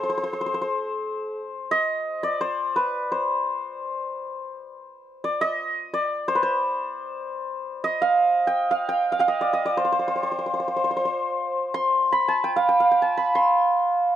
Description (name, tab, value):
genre	persian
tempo	85 BPM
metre	3/4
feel	straight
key	C avaz esfahan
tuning	A4 = 444 Hz
part	santur	melody	0.0-14.2 s	Ab4+50c to C6	-21 LUFS	equal	none
room	light reverb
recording	dry, close 1970s-style studio recording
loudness	-21 LUFS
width	side -11 dB against mid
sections	0.0-1.5 A section; 1.5-14.2 B section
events	none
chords	none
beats	0.10 0.81 | 1.51 2.22 2.92 | 3.63 4.33 5.04 | 5.74 6.45 7.15 | 7.86 8.56 9.27 | 9.97 10.67 11.38 | 12.08 12.79 13.49